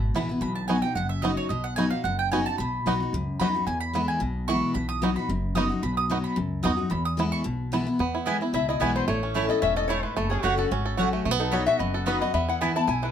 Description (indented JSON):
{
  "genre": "bluegrass",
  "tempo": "222 BPM",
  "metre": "4/4",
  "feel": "swing 54% on 8ths",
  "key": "E major",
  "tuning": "A4 = 440 Hz",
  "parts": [
    { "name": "picked steel-string acoustic guitar", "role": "accompaniment", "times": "0.0-13.1 s", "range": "E2 to F#4", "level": "-28 LUFS", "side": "left 3 dB", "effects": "none" },
    { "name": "upright bass", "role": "bass", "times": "0.0-13.1 s", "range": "E1 to E2", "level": "-31 LUFS", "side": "equal", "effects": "none" },
    { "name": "bluegrass banjo", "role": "melody", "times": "0.2-13.1 s", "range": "E3 to A4", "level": "-29 LUFS", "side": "right 6 dB", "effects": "none" },
    { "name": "mandolin", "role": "stabs", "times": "0.4-12.7 s", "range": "A3 to D#6", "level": "-29 LUFS", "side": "right 3 dB", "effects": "none" },
    { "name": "lap resonator guitar", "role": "melody", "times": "8.5-13.1 s", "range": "F#4 to A5", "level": "-30 LUFS", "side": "left 6 dB", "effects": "none" },
    { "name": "lap resonator guitar", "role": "second line", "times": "8.5-13.1 s", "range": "F#4 to A5", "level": "-31 LUFS", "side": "left 7 dB", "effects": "none" }
  ],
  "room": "moderate studio reverb, RT60 0.5 s",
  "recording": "minimal, uncompressed stereo recording",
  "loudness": "-23 LUFS",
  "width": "side -9 dB against mid",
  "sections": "0.0-8.0 A section; 8.0-13.1 B section",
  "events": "mandolin solo 0.0-8.0",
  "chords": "0.4 B; 3.7 E; 4.7 B; 6.9 E; 9.1 A; 10.2 F#m; 11.3 B; 12.3 E"
}